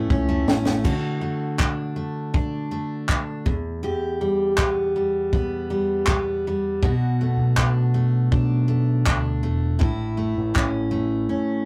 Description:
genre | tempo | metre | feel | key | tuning
acoustic pop | 80 BPM | 4/4 | straight | D major | A4 = 440 Hz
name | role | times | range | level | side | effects
picked steel-string acoustic guitar | accompaniment | 0.0-11.7 s | E2 to G4 | -25 LUFS | equal | none
fingered electric bass | bass | 0.0-0.8, 6.8-11.3 s | E1 to D2 | -28 LUFS | equal | none
compact cocktail drum kit | drums | 0.1-10.7 s | crash cymbal, handclaps, kick drum, snare drum | -25 LUFS | equal | none
room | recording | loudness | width
wet booth ambience, RT60 0.2 s | rough rehearsal-room recording, warm saturation | -23 LUFS | mono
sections
0.8-11.7 A section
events
drum fill 0.0-0.8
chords
0.0 A; 0.8 D; 3.5 Em; 6.8 Bm7; 9.8 A

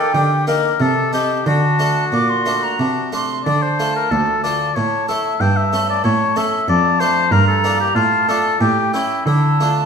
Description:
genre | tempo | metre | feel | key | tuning
classical, baroque-style sonata movement with continuo | 92 BPM | 3/4 | rubato | D minor from 3.5 s | A4 = 440 Hz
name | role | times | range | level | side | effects
warm oboe | melody | 0.0-9.7 s | E4 to G5 | -19 LUFS | left 5 dB | none
silver concert flute | second line | 0.0-9.9 s | G5 to D6 | -22 LUFS | right 5 dB | none
harpsichord | accompaniment | 0.0-9.9 s | D2 to A4 | -22 LUFS | left 1 dB | none
rich cello | bass | 0.0-9.9 s | D2 to D3 | -20 LUFS | right 2 dB | none
room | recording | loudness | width
wet recital hall reverb, RT60 1.4 s | minimal, uncompressed stereo recording | -14 LUFS | side -6 dB against mid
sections
0.0-9.9 A section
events
none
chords
0.0 Eb; 0.8 Adim/C; 1.5 D; 3.5 Dm; 4.8 A; 5.4 A7/G; 6.7 Dm/F; 7.3 Em7b5/G; 8.0 Dm/A; 8.6 A7; 9.3 Dm

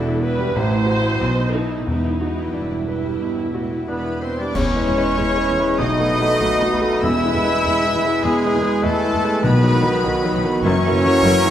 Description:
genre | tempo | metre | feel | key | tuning
classical, romantic movement for piano and orchestra | 88-102 BPM | 4/4 | rubato | E minor, E major from 4.5 s | A4 = 436 Hz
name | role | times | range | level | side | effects
bright concert grand piano | melody | 0.0-11.5 s | A1 to B4 | -21 LUFS | left 1 dB | none
warm symphonic violin section | melody | 0.0-11.5 s | G5 to E6 | -30 LUFS | left 4 dB | none
warm studio violin section | second line | 0.0-11.5 s | D#4 to E5 | -28 LUFS | left 5 dB | none
dark symphonic viola section | accompaniment | 0.0-11.3 s | F#3 to C5 | -28 LUFS | right 2 dB | none
warm symphonic cello section | bass | 0.0-11.5 s | E2 to E4 | -27 LUFS | right 2 dB | none
warm symphonic double bass section | bass | 0.0-11.3 s | E1 to E2 | -28 LUFS | right 3 dB | none
timpani | percussion | 0.0-10.3 s | E2 to B2 | -26 LUFS | left 1 dB | none
cymbal swell, clash cymbals and concert bass drum | percussion | 1.9-5.8 s | none | -30 LUFS | equal | none
mellow cor anglais | second line | 3.9-11.5 s | G#3 to E4 | -28 LUFS | right 1 dB | none
warm clarinet | second line | 3.9-11.5 s | G#4 to E5 | -28 LUFS | left 1 dB | none
bright trumpet | stabs | 3.9-11.5 s | G#4 to E5 | -24 LUFS | right 2 dB | none
mellow hollow large flute ensemble | second line | 4.5-11.5 s | A#5 to B5 | -31 LUFS | equal | none
warm bassoon | accompaniment | 4.5-11.5 s | D#3 to A3 | -30 LUFS | right 1 dB | none
mellow French horn section | sustained chords | 4.6-11.5 s | A#3 to F#4 | -28 LUFS | left 1 dB | none
warm trombone section | sustained chords | 4.6-11.5 s | B2 to A3 | -29 LUFS | right 3 dB | none
room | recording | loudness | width
wet concert hall reverb, RT60 1.9 s | none | -16 LUFS | side -10 dB against mid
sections
0.0-4.5 A section; 4.5-11.5 B section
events
band accent 4.5-5.2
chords
0.0 Em; 0.6 Am; 1.2 B7b9; 1.9 Em; 4.5 E; 5.8 B7; 7.0 E; 9.4 B; 10.6 F#7

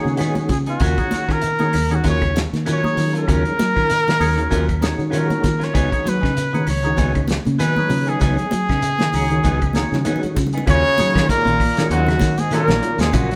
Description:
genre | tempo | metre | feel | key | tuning
afrobeat | 97 BPM | 4/4 | swing 56% on 16ths | Eb minor | A4 = 439 Hz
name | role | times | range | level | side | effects
clear trumpet | melody | 0.0-13.4 s | Gb4 to Db5 | -24 LUFS | equal | none
percussive tonewheel organ | accompaniment | 0.0-13.1 s | Eb3 to Gb4 | -28 LUFS | equal | chorus vibrato, slow rotary speaker
congas | percussion | 0.0-13.3 s | none | -29 LUFS | equal | none
fingered electric bass | bass | 0.1-13.4 s | Bb1 to Eb3 | -24 LUFS | equal | none
shekere | percussion | 0.1-13.3 s | none | -36 LUFS | equal | none
semi-hollow electric guitar | arpeggios | 0.2-13.3 s | Db3 to Gb3 | -28 LUFS | equal | none
clean electric guitar | stabs | 0.2-13.3 s | Gb3 to Bb4 | -30 LUFS | equal | none
cloth-damped thuddy drum kit | drums | 0.2-13.4 s | hi-hat, kick drum, snare drum | -26 LUFS | equal | none
claves | percussion | 0.2-13.3 s | none | -43 LUFS | equal | none
brilliant bass trombone | second line | 10.7-13.4 s | Gb2 to Db3 | -30 LUFS | equal | none
clear trombone | second line | 10.7-13.4 s | Gb3 to Db4 | -31 LUFS | equal | none
room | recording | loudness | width
moderate stone room reverb, RT60 1.2 s | band playing live in one room | -18 LUFS | mono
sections
0.0-10.7 A section; 10.7-13.4 B section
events
drum fill 9.8-10.7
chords
0.0 Db9sus4; 0.8 Ebm9; 5.7 Db9sus4; 10.7 Ebm9

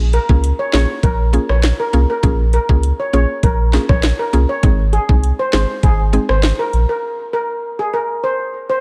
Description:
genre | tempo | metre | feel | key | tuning
dancehall | 100 BPM | 4/4 | straight | Bb minor | A4 = 440 Hz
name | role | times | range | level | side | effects
warm sub bass | bass | 0.0-6.9 s | Ab1 to Db2 | -17 LUFS | equal | none
steel pan | melody | 0.1-8.8 s | Ab4 to Db5 | -22 LUFS | equal | none
island pop drum kit | drums | 0.1-6.9 s | hi-hat, kick drum, rim click, snare drum | -19 LUFS | equal | vintage 12-bit sampler grit
mallet-like synth pluck | accompaniment | 0.3-6.3 s | Ab3 to Ab4 | -24 LUFS | equal | chorus
room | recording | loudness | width
digital ambience | none | -16 LUFS | mono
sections
0.0-8.8 A section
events
break 7.0-8.8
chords
0.0 Bbm7; 4.6 Ab

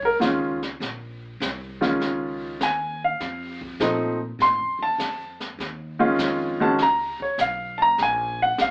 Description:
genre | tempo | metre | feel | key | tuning
jazz piano trio | 100 BPM | 4/4 | swing 68% on 8ths | unclear | A4 = 440 Hz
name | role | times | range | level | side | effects
warm upright piano | melody | 0.0-8.7 s | Eb3 to C6 | -21 LUFS | equal | none
upright bass | bass | 0.0-8.7 s | Bb1 to Bb2 | -37 LUFS | equal | none
jazz brush drum kit | drums | 0.0-8.7 s | brushed snare drum, hi-hat, kick drum, snare drum | -31 LUFS | equal | none
room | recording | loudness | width
wet small room reverb, RT60 0.5 s | heard from further back in the room, AM radio sound | -21 LUFS | side -36 dB against mid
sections
0.0-8.7 A section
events
upright piano solo 0.0-8.7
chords
0.0 Eb7sus2; 3.2 F; 5.6 Eb7sus2; 8.0 Bbsus2

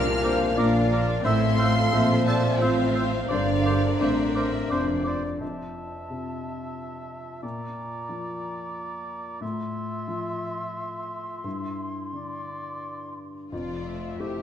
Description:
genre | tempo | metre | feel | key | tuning
cinematic | 88 BPM | 3/4 | rubato | F major | A4 = 438 Hz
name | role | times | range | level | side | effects
rich symphonic violin section | melody | 0.0-5.1, 13.5-14.4 s | C5 to F6 | -33 LUFS | left 2 dB | none
warm clarinet | second line | 0.0-14.4 s | E4 to F5 | -34 LUFS | equal | none
warm oboe | second line | 0.0-13.2 s | Bb4 to E5 | -36 LUFS | right 2 dB | none
warm symphonic violin section | second line | 0.0-5.2, 13.5-14.4 s | F4 to F5 | -33 LUFS | left 2 dB | none
felt-muted upright piano | accompaniment | 0.0-14.4 s | F2 to E5 | -30 LUFS | left 2 dB | none
rich symphonic viola section | accompaniment | 0.0-5.2, 13.9-14.4 s | A3 to E5 | -31 LUFS | right 1 dB | none
mellow French horn section | sustained chords | 0.0-5.1 s | D3 to C5 | -30 LUFS | left 3 dB | none
clear symphonic double bass section | bass | 0.0-5.4, 13.5-14.4 s | F1 to C2 | -30 LUFS | right 4 dB | none
dark symphonic cello section | bass | 0.0-5.4, 13.5-14.4 s | F2 to C3 | -28 LUFS | right 1 dB | none
hollow concert flute | second line | 0.2-13.2 s | A5 to E6 | -36 LUFS | equal | none
room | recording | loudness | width
wet scoring stage reverb, RT60 1.9 s | none | -24 LUFS | side -9 dB against mid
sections
0.0-5.4 A section; 5.4-13.5 B section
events
none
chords
0.0 Bb; 1.2 Fmaj7/A; 3.3 Cadd9/G; 5.4 Fmaj7; 7.4 Bb; 9.4 Fmaj7/A; 11.4 Cadd9/G; 13.5 Fmaj7

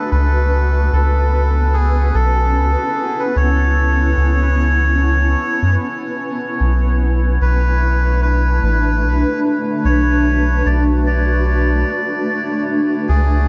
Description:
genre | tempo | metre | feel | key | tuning
ambient dub | 74 BPM | 4/4 | swing 59% on 16ths | B minor | A4 = 440 Hz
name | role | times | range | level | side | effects
melodica | melody | 0.0-13.5 s | G#4 to D5 | -23 LUFS | equal | dub echo
granular cloud pad | sustained chords | 0.0-13.5 s | A3 to B4 | -23 LUFS | equal | built-in reverb
soft dub sub bass | bass | 0.1-13.5 s | A1 to F#2 | -17 LUFS | equal | none
room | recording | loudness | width
moderate huge ambient reverb, RT60 8.0 s | dreamy mix soaked in reverb, nothing above 7.5 kHz | -16 LUFS | mono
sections
0.0-13.5 A section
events
none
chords
0.1 C#m7; 6.6 Bm7

